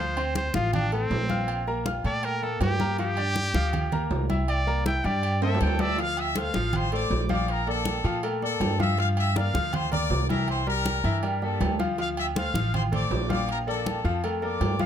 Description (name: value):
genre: latin, salsa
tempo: 160 BPM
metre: 4/4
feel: straight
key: D minor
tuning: A4 = 440 Hz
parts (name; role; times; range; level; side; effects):
- bright trumpet; melody; 0.0-6.0 s; C4 to G5; -30 LUFS; equal; none
- bright baby grand piano; accompaniment; 0.0-14.9 s; E3 to F6; -30 LUFS; left 2 dB; none
- upright bass; bass; 0.0-14.9 s; A1 to Bb2; -28 LUFS; equal; none
- agogo bells and timbales; percussion; 0.2-14.9 s; none; -33 LUFS; right 6 dB; none
- congas; percussion; 0.2-14.9 s; none; -32 LUFS; left 1 dB; none
- bright trumpet section; melody; 5.4-14.9 s; A4 to E6; -30 LUFS; left 3 dB; none
room: light reverb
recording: close, detailed microphones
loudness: -24 LUFS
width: side -9 dB against mid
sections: 0.0-6.0 A section; 6.0-14.9 B section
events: trumpet solo 0.0-6.0; drum fill 5.4-6.0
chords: 0.0 Dm7; 1.5 Bb5; 3.0 Gm7; 4.5 C7; 6.0 Dm7; 7.5 Bbmaj7; 9.0 Gm7; 12.0 Dm7; 13.5 Bbmaj7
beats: 0.36 0.73 1.11 | 1.48 1.86 2.23 2.61 | 2.98 3.36 3.73 4.11 | 4.48 4.86 5.23 5.61 | 5.98 6.36 6.73 7.11 | 7.48 7.86 8.23 8.61 | 8.98 9.36 9.73 10.11 | 10.48 10.86 11.23 11.61 | 11.98 12.36 12.73 13.11 | 13.48 13.86 14.23 14.61